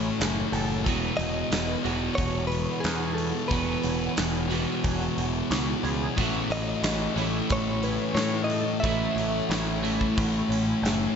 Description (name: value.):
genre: rock, shoegaze and dream pop.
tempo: 90 BPM.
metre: 4/4.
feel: straight.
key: E major.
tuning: A4 = 439 Hz.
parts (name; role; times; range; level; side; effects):
fingerpicked twelve-string acoustic guitar; arpeggios; 0.0-11.2 s; F#3 to A4; -37 LUFS; right 7 dB; analog chorus, analog delay.
clean electric guitar; riff; 0.0-11.2 s; E2 to F#4; -32 LUFS; right 9 dB; reverse reverb.
overdriven electric guitar; riff; 0.0-11.2 s; E2 to A3; -34 LUFS; right 2 dB; none.
thick fuzz guitar; riff; 0.0-11.2 s; E2 to A3; -30 LUFS; left 10 dB; distortion, wide subtle chorus.
growling picked electric bass; bass; 0.0-11.1 s; E1 to A2; -31 LUFS; equal; overdrive.
huge arena drum kit; drums; 0.2-11.0 s; hi-hat, kick drum, snare drum; -32 LUFS; right 1 dB; none.
direct-recorded clean electric guitar; melody; 1.2-9.4 s; G#4 to E5; -32 LUFS; equal; spring reverb, analog delay.
room: light reverb, small room reverb.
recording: nothing above 7.8 kHz.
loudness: -24 LUFS.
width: side -7 dB against mid.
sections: 0.0-11.2 A section.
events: none.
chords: 0.0 A6; 0.9 Eadd9; 6.2 A6.